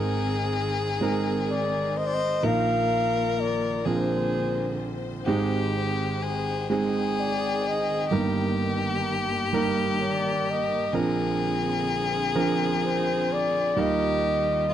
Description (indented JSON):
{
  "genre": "acoustic folk-pop ballad",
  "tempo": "42 BPM (dotted quarters)",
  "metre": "6/8",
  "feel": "straight",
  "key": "Eb major",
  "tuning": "A4 = 436 Hz",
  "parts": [
    { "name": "rich violin", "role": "second line", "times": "0.0-14.7 s", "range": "F4 to C5", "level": "-29 LUFS", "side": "left 5 dB", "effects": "none" },
    { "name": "warm concert grand piano", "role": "accompaniment", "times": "0.0-14.7 s", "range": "G1 to Bb4", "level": "-27 LUFS", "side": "right 3 dB", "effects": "none" },
    { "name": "clear studio string section", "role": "sustained chords", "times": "0.0-14.7 s", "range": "G2 to G5", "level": "-34 LUFS", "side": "left 2 dB", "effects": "none" },
    { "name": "mellow flugelhorn", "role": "melody", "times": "1.5-14.7 s", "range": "C5 to F5", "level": "-26 LUFS", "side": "left 1 dB", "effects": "none" }
  ],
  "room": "light reverb",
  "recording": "dry, close 1970s-style studio recording",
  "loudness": "-23 LUFS",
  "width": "side -10 dB against mid",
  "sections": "0.0-14.7 A section",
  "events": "none",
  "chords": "0.0 Abadd9; 2.4 Bbsus4; 3.9 Bbadd9; 5.3 Abmaj7; 8.1 Eb/G; 10.9 Bbadd9; 13.8 Ebadd9",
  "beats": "1.03 | 2.44 3.86 | 5.27 6.69 | 8.11 9.53 | 10.94 12.35 | 13.77"
}